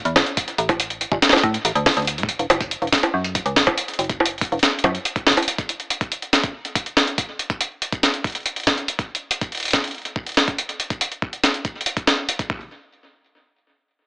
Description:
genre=IDM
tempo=141 BPM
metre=4/4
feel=straight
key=unclear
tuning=A4 = 439 Hz
part: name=metallic FM bass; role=bass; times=0.1-5.3 s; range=E1 to A2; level=-23 LUFS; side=equal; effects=none
part: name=jungle sampler-style drum kit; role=drums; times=0.1-12.5 s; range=bongos, hi-hat, snare drum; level=-18 LUFS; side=equal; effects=none
part: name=electronic kick drum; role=drums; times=0.4-12.6 s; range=none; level=-25 LUFS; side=equal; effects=none
room=light reverb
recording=AM radio sound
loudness=-18 LUFS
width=side -28 dB against mid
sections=0.0-12.7 A section; 12.7-14.1 B section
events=none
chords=none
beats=0.37 | 0.80 1.22 1.65 2.07 | 2.50 2.92 3.35 3.78 | 4.20 4.63 5.05 5.48 | 5.90 6.33 6.75 7.18 | 7.61 8.03 8.46 8.88 | 9.31 9.73 10.16 10.58 | 11.01 11.44 11.86 12.29

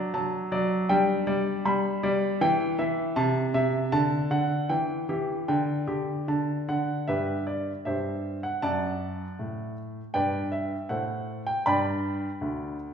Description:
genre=classical-period piano sonatina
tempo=79 BPM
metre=2/4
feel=rubato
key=G major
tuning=A4 = 441 Hz
part: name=warm baby grand piano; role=solo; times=0.0-12.9 s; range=D2 to B5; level=-25 LUFS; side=equal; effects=none
room=wet recital hall reverb, RT60 1.6 s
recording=heard from further back in the room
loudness=-25 LUFS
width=side -7 dB against mid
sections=0.0-7.1 A section; 7.1-12.9 B section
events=none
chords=0.0 D/F#; 0.9 G; 2.4 Em; 3.2 Am/C; 3.9 D; 4.7 Em; 5.5 G5/D; 6.3 D; 7.1 G; 7.9 C/G; 8.6 D/F#; 10.1 G; 10.9 F#dim/A; 11.7 G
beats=0.14 | 0.90 1.65 | 2.41 3.15 | 3.91 4.69 | 5.48 6.28 | 7.08 7.85 | 8.62 9.38 | 10.14 10.90 | 11.66 12.41

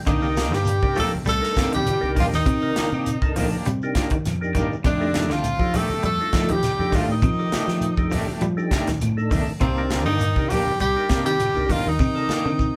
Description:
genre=afrobeat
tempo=101 BPM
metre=4/4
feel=straight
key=F mixolydian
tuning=A4 = 441 Hz
part: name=percussive tonewheel organ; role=accompaniment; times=0.0-12.5 s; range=A3 to D5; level=-33 LUFS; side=equal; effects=slow rotary speaker, chorus vibrato
part: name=clear tenor saxophone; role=melody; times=0.1-12.8 s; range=C4 to A4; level=-27 LUFS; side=equal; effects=none
part: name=raspy alto saxophone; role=second line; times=0.1-12.8 s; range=C4 to A4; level=-37 LUFS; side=equal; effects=none
part: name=warm baritone saxophone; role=second line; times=0.1-12.8 s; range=C3 to A3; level=-36 LUFS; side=equal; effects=none
part: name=electric guitar at the edge of break-up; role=arpeggios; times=0.1-12.7 s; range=C3 to G3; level=-32 LUFS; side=equal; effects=none
part: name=electric guitar at the edge of break-up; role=stabs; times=0.1-12.5 s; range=Eb3 to G4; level=-33 LUFS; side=equal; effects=tremolo
part: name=fingered electric bass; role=bass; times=0.1-12.7 s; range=C2 to F3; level=-29 LUFS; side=equal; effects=none
part: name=tight funk drum kit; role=drums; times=0.1-12.7 s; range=hi-hat, kick drum, snare drum, toms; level=-28 LUFS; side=equal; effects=none
part: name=claves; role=percussion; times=0.1-12.6 s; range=none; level=-45 LUFS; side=equal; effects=none
part: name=congas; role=percussion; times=0.1-12.8 s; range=none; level=-32 LUFS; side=equal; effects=none
part: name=shekere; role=percussion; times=0.1-12.8 s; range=none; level=-34 LUFS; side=equal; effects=none
room=wet small room ambience, RT60 0.5 s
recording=band playing live in one room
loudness=-22 LUFS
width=mono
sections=0.0-12.8 A section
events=drum fill 12.0-12.8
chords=0.1 Cm9; 4.8 F13; 9.6 Cm9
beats=| 0.07 0.67 1.26 1.86 | 2.46 3.06 3.65 4.25 | 4.85 5.44 6.04 6.63 | 7.23 7.83 8.42 9.02 | 9.62 10.21 10.81 11.41 | 12.00 12.60

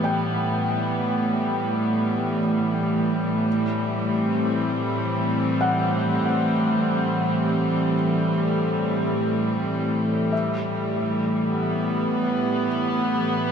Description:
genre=ambient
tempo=free time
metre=none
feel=none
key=A dorian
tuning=A4 = 440 Hz
part: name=rich chamber string section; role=sustained chords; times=0.0-13.5 s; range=A2 to C4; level=-21 LUFS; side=equal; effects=stereo widening
part: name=felt-muted upright piano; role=arpeggios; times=0.0-13.5 s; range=E5 to G5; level=-32 LUFS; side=left 2 dB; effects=analog chorus, diffuse ambient delay
part: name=analog drone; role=drone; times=1.7-13.5 s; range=A3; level=-32 LUFS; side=equal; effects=none
room=wet huge ambient reverb, RT60 8.3 s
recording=dreamy mix soaked in reverb, cassette tape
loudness=-21 LUFS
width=side -7 dB against mid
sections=0.0-13.5 A section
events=none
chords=0.0 Em/A; 3.5 Am7; 10.3 Em/A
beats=free time

